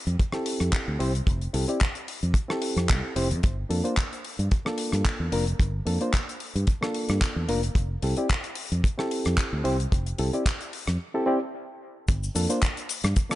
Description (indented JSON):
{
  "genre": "nu-disco, nu disco",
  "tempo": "111 BPM",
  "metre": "4/4",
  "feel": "swing 54% on 16ths",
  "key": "G dorian",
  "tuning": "A4 = 442 Hz",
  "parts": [
    { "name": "fingered electric bass", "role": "bass", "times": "0.1-13.1 s", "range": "F1 to G2", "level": "-26 LUFS", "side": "equal", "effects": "none" },
    { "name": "damped 70s drum kit", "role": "drums", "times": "0.1-13.4 s", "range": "cabasa, handclaps, hi-hat, rim click", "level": "-31 LUFS", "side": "left 2 dB", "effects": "none" },
    { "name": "kick drum", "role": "drums", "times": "0.2-13.3 s", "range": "none", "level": "-23 LUFS", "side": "equal", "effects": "none" },
    { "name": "reed electric piano", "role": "accompaniment", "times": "0.3-13.4 s", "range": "Bb3 to D5", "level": "-29 LUFS", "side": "equal", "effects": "sidechain pumping, dub echo" }
  ],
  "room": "studio ambience",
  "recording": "nothing above 10.7 kHz",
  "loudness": "-24 LUFS",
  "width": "side -15 dB against mid",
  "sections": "0.0-12.1 A section; 12.1-13.4 B section",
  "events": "break 11.0-12.1; drop 12.1-13.4",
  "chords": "0.0 Fmaj9; 3.4 Gm9; 7.8 Fmaj9; 12.1 Gm9"
}